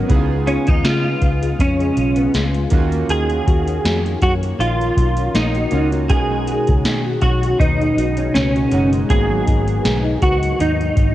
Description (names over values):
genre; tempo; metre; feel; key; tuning
indie pop, bedroom pop; 80 BPM; 4/4; swing 55% on 16ths; B lydian; A4 = 439 Hz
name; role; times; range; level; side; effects
chorused retro synth keys; accompaniment; 0.0-11.1 s; G#3 to A#4; -27 LUFS; right 7 dB; cassette tape
nylon-string guitar; accompaniment; 0.0-11.1 s; G#2 to F#4; -24 LUFS; left 6 dB; ensemble chorus, warbly pitch drift, cassette tape
vintage muted fingered electric bass; bass; 0.0-11.1 s; F#1 to C#3; -21 LUFS; equal; none
soft vintage rhythm box; drums; 0.1-11.1 s; hi-hat, kick drum, snare drum; -19 LUFS; equal; overdrive
clean electric guitar; melody; 0.5-11.1 s; C#4 to G#4; -20 LUFS; right 1 dB; ensemble chorus, cassette tape, tape echo
room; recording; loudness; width
light reverb; home recording on cassette; -15 LUFS; side -14 dB against mid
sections
0.0-11.1 A section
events
none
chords
0.1 C#7; 2.7 D#m7; 6.1 B69; 9.1 G#m7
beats
| 0.10 0.85 1.60 2.35 | 3.10 3.85 4.60 5.35 | 6.10 6.85 7.60 8.35 | 9.10 9.85 10.60